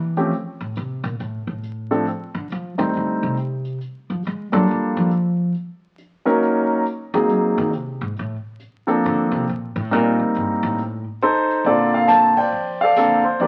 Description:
jazz piano trio; 138 BPM; 4/4; swing 65% on 8ths; Bb major; A4 = 440 Hz
upright bass; bass; 0.0-13.5 s; D2 to Ab3; -27 LUFS; equal
warm concert grand piano; melody; 0.2-13.5 s; D3 to A5; -20 LUFS; equal
jazz brush drum kit; drums; 0.2-13.5 s; brushed snare drum, hi-hat, kick drum, ride cymbal, snare drum; -43 LUFS; equal
wet large studio reverb, RT60 1.1 s; very old 78 rpm record, vinyl crackle; -21 LUFS; mono
0.0-11.6 A section; 11.6-13.5 B section
upright bass solo 0.0-11.6; band accent 12.3
0.3 Am; 1.2 Dm7 (rootless); 2.9 Am7b5; 3.8 N.C.; 4.7 Gm9; 6.4 Ebm7; 7.3 Ab9; 8.2 Bbmaj9; 9.9 Cm7; 10.8 Adim; 11.6 Bbmaj9

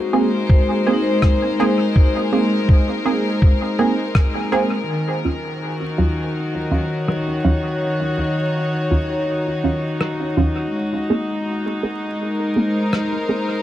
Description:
ambient dub; 82 BPM; 4/4; straight; Eb dorian; A4 = 440 Hz
warm studio string section; sustained chords; 0.0-13.6 s; Eb3 to Db5; -21 LUFS; left 1 dB
vibraphone with hard mallets; arpeggios; 0.0-4.9 s; Eb4 to C5; -25 LUFS; left 4 dB; dub echo
filtered dub chord stab; stabs; 0.1-13.4 s; Eb2 to Ab4; -22 LUFS; right 2 dB; chorus, dub echo
electronic kick drum; drums; 0.5-4.3 s; -13 LUFS; equal
rim click; drums; 1.2-13.1 s; -27 LUFS; left 1 dB; low-pass filter on snare, low-pass filter on room, dub echo
light reverb, small room ambience; dark, warm production, vinyl crackle; -17 LUFS; side -13 dB against mid
0.0-4.9 A section; 4.9-13.6 B section
band accent 4.2-4.5; filter sweep on synth stab 4.9-13.6
0.0 Abadd9; 4.9 Ebm7; 10.7 Abadd9

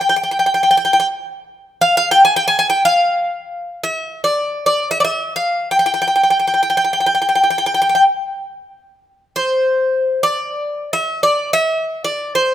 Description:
Turkish makam ensemble; free time; G makam hicaz; A4 = 441 Hz
Greek bouzouki; solo; 0.0-12.5 s; C5 to Ab5; -14 LUFS; equal
moderate recital hall reverb, RT60 1.6 s; close, detailed microphones; -14 LUFS; side -11 dB against mid
0.0-12.5 A section

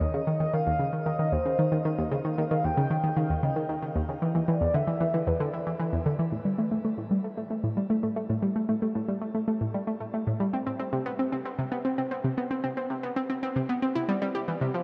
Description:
ambient; 114 BPM; 4/4; straight; A4 = 440 Hz
analog pluck; riff; 0.0-14.8 s; Eb2 to G4; -29 LUFS; equal; chorus, shimmer reverb, tape echo
mellow horn-like synth lead; melody; 0.3-6.1, 14.7-14.8 s; B4 to G5; -34 LUFS; equal; chorus, shimmer reverb, tape echo
wet huge ambient reverb, RT60 9.1 s; dark, warm production; -28 LUFS; mono
0.0-6.3 A section; 6.3-14.8 B section
0.0 Eb7(no3); 4.2 E5; 6.3 Gsus2/A; 10.5 Cmaj7(no3)

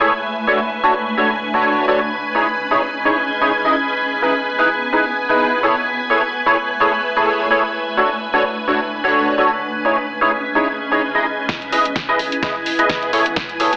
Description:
piano house; 128 BPM; 4/4; swing 55% on 16ths; E major; A4 = 442 Hz
string machine, violins; sustained chords; 0.0-13.8 s; B4 to G#5; -24 LUFS; equal; ensemble chorus, sidechain pumping
percussive organ stab; riff; 0.0-13.7 s; D4 to D#5; -19 LUFS; equal; ensemble chorus, sidechain pumping, dub echo
granular cloud pad; texture; 0.0-13.8 s; A3 to B5; -29 LUFS; equal; built-in reverb, sidechain pumping
modern bright fingered electric bass; bass; 11.5-13.8 s; E1 to A2; -36 LUFS; equal; sidechain pumping, high-pass filter
electronic kick drum; drums; 11.5-13.5 s; -29 LUFS; equal; overdrive
house drum kit; drums; 11.5-13.8 s; hi-hat, snare drum; -26 LUFS; equal; low-pass filter on snare, low-pass filter on hats
wet digital room reverb, RT60 1.2 s; AM radio sound; -17 LUFS; mono
0.0-11.5 A section; 11.5-13.8 B section
build-up 11.5-13.8; drum fill 11.5-13.8
0.2 Dmaj7; 2.1 C#madd9; 4.0 Emaj7; 5.6 Amaj7; 7.7 Dmaj7; 9.6 C#madd9; 11.5 Emaj7; 13.1 Amaj7

